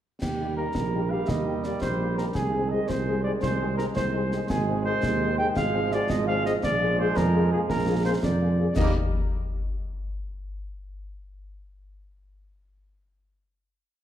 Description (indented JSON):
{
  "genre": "military-style march for wind band",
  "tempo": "112 BPM (dotted quarters)",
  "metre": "6/8",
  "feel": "straight",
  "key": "Eb major",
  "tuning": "A4 = 440 Hz",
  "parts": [
    { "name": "dark cornet", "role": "melody", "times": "0.2-8.9 s", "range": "G4 to G5", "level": "-29 LUFS", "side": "equal", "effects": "none" },
    { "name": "clear trombone section", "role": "sustained chords", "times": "0.2-8.9 s", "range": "Eb3 to Bb3", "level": "-33 LUFS", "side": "right 3 dB", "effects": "none" },
    { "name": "mellow tuba", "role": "bass", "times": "0.2-8.9 s", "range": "Ab1 to F2", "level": "-27 LUFS", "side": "right 2 dB", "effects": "none" },
    { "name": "concert snare drum, clash cymbals and concert bass drum", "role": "drums", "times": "0.2-9.0 s", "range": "none", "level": "-31 LUFS", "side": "left 1 dB", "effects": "none" },
    { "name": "warm French horn section", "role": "accompaniment", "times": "0.4-8.9 s", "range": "Bb3 to Ab4", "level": "-32 LUFS", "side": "left 4 dB", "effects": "none" }
  ],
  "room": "wet recital hall reverb, RT60 1.8 s",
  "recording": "dark, warm production",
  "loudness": "-23 LUFS",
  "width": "side -10 dB against mid",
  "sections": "0.2-8.8 A section; 8.8-9.8 final chord",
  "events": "none",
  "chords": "0.2 Eb; 2.4 Ab/C; 4.5 Ab; 5.6 Fm/Ab; 6.6 Bb7; 8.8 Eb"
}